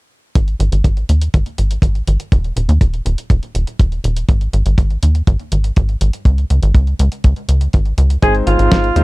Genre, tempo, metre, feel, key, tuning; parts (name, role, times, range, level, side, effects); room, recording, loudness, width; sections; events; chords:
italo disco; 122 BPM; 4/4; straight; Ab major; A4 = 440 Hz
tight sequencer bass; bass; 0.4-9.0 s; Eb1 to Eb2; -14 LUFS; equal
clean 12-bit digital drum machine; drums; 0.4-9.0 s; hi-hat, snare drum; -25 LUFS; equal
kick drum; drums; 0.4-8.8 s; -12 LUFS; equal
breathy alto saxophone; melody; 8.2-9.0 s; F4 to Ab4; -15 LUFS; right 1 dB; tape echo
warm electric grand piano; stabs; 8.2-9.0 s; Ab3 to C5; -19 LUFS; left 2 dB
little or no reverb; dry, close 1970s-style studio recording; -13 LUFS; side -22 dB against mid
0.4-9.0 A section
0.4 Ab5; 2.3 N.C.; 4.3 Ab5; 6.3 Db5; 8.2 Ab